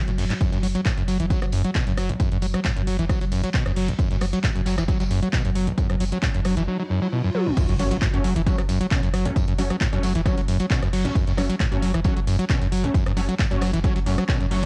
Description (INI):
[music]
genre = driving peak-time techno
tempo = 134 BPM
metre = 4/4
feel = straight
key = F# minor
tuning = A4 = 440 Hz
[part]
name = screaming distorted acid line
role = riff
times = 0.0-14.7 s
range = F#1 to F#3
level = -27 LUFS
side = equal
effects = distortion, chorus, sidechain pumping, analog delay
[part]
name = deep dark ambient pad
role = drone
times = 0.0-6.7 s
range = F#3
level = -36 LUFS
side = equal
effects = none
[part]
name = warm sub bass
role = bass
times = 0.1-14.6 s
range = F#1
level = -29 LUFS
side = equal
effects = tube saturation, sidechain pumping, low-pass filter
[part]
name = techno drum kit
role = drums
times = 0.1-14.7 s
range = crash cymbal, handclaps, hi-hat, rim click, toms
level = -34 LUFS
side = equal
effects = sidechain pumping on hats, cassette tape, sidechain pumping on cymbals, sidechain pumping on toms
[part]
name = vintage drum kit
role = drums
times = 0.1-14.6 s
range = hi-hat, snare drum, tambourine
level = -43 LUFS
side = equal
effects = sidechain pumping on hats, high-pass filter on hats, cassette tape, high-pass filter on snare, sidechain pumping on perc, high-pass filter on perc, high-pass filter on room
[part]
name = electronic kick drum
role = drums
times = 0.4-14.4 s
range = none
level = -26 LUFS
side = equal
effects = cassette tape
[part]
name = riser and impact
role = sound effects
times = 5.8-9.4 s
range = none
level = -36 LUFS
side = equal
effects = none
[part]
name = rave stab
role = stabs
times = 7.8-14.7 s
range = F#3 to C#4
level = -33 LUFS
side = equal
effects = chorus, built-in reverb, sidechain pumping, analog delay
[sound]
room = digital ambience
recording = home recording on cassette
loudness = -23 LUFS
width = mono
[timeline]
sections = 0.0-7.6 A section; 7.6-14.7 B section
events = riser 5.8-7.6; drum fill 7.3; drop 7.6-14.7; impact 7.6-9.4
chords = 0.0 N.C.; 7.6 F#m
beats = | 0.41 0.85 1.30 1.75 | 2.20 2.65 3.09 3.54 | 3.99 4.44 4.88 5.33 | 5.78 6.23 6.67 7.12 | 7.57 8.02 8.47 8.91 | 9.36 9.81 10.26 10.71 | 11.15 11.60 12.05 12.50 | 12.94 13.39 13.84 14.29